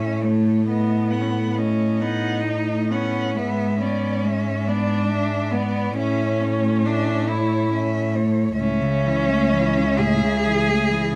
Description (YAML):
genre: classical, lyrical piece for cello ensemble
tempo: 45 BPM (dotted quarters)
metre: 6/8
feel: rubato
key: A major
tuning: A4 = 440 Hz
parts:
  - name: warm cello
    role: melody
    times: 0.0-11.2 s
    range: C#5 to F#5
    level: -33 LUFS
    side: equal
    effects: none
  - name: rich cello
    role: second line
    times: 0.0-11.2 s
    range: A3 to G#4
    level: -27 LUFS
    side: equal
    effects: none
  - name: warm cello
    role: accompaniment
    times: 0.0-11.2 s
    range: A2 to C#4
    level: -27 LUFS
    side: equal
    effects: none
  - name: dark cello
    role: bass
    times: 0.0-11.2 s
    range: C#2 to A2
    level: -25 LUFS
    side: equal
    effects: none
room: moderate stone room reverb, RT60 1.3 s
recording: dark, warm production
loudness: -21 LUFS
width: mono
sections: 0.0-11.2 A section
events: none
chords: 0.0 A; 0.7 B7/A; 3.4 E7/G#; 6.0 A; 8.6 A/C#